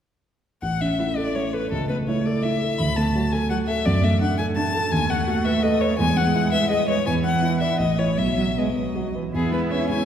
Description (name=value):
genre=quick classical-period movement for piano quartet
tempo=167 BPM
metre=3/4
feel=rubato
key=A major, E major from 4.9 s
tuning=A4 = 443 Hz
part: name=clear violin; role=melody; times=0.6-10.1 s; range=G#4 to B5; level=-25 LUFS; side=left 5 dB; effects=none
part: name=dark grand piano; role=accompaniment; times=0.6-10.1 s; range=A1 to D5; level=-22 LUFS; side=equal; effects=none
part: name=rich cello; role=second line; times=1.0-10.1 s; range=E3 to C#4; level=-27 LUFS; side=right 6 dB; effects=none
part: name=rich viola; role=accompaniment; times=9.3-10.1 s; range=E4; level=-30 LUFS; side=equal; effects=none
room=wet concert hall reverb, RT60 1.8 s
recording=heard from further back in the room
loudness=-20 LUFS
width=side -9 dB against mid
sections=0.6-9.3 A section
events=none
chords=0.6 A; 1.7 A/C#; 2.8 D; 3.9 D/F#; 4.9 B7/D#; 6.0 E; 7.1 E5; 7.8 A; 8.2 B; 9.3 E